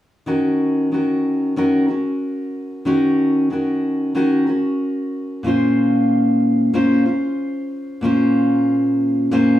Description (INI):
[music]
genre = pop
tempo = 93 BPM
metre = 4/4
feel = straight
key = unclear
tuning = A4 = 440 Hz
[part]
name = fingerpicked steel-string acoustic guitar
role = accompaniment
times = 0.3-9.6 s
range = Bb2 to C5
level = -16 LUFS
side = equal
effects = none
[sound]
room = moderate studio reverb, RT60 0.8 s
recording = small room ambience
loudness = -16 LUFS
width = side -13 dB against mid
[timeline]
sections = 0.3-9.6 A section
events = none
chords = 0.3 Ebm7; 5.4 Bbmadd9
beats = | 0.27 0.92 1.57 2.21 | 2.86 3.51 4.15 4.80 | 5.45 6.09 6.74 7.38 | 8.03 8.68 9.32